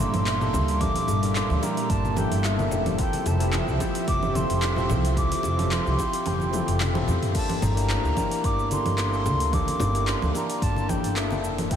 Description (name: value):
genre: sunset chillout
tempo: 110 BPM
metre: 4/4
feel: swing 54% on 16ths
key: G dorian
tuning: A4 = 439 Hz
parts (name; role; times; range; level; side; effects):
- reedy baroque flute; melody; 0.0-11.8 s; E5 to D6; -29 LUFS; equal; diffuse ambient delay
- overdriven tine electric piano; accompaniment; 0.0-11.8 s; A3 to C5; -30 LUFS; moving between left 6 dB and right 6 dB; auto-pan, ping-pong delay
- airy breathy pad; sustained chords; 0.0-7.3 s; Bb2 to E5; -31 LUFS; right 1 dB; chorus
- upright bass; bass; 0.0-11.8 s; F1 to F2; -26 LUFS; equal; none
- deep house drum kit; drums; 0.0-11.8 s; cabasa, congas, crash cymbal, handclaps, hi-hat, toms; -30 LUFS; right 1 dB; overdrive
- congas and bongos; percussion; 0.4-11.4 s; none; -35 LUFS; left 3 dB; none
- electronic kick drum; drums; 0.8-11.8 s; none; -29 LUFS; equal; overdrive
room: moderate huge ambient reverb, RT60 8.1 s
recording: dreamy mix soaked in reverb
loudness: -22 LUFS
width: side -9 dB against mid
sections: 0.0-7.3 A section; 7.3-11.8 A section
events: kick drops out 6.3-7.3; drum fill 6.5-7.3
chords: 0.0 Gm69; 3.0 Fmaj9; 7.3 Gm69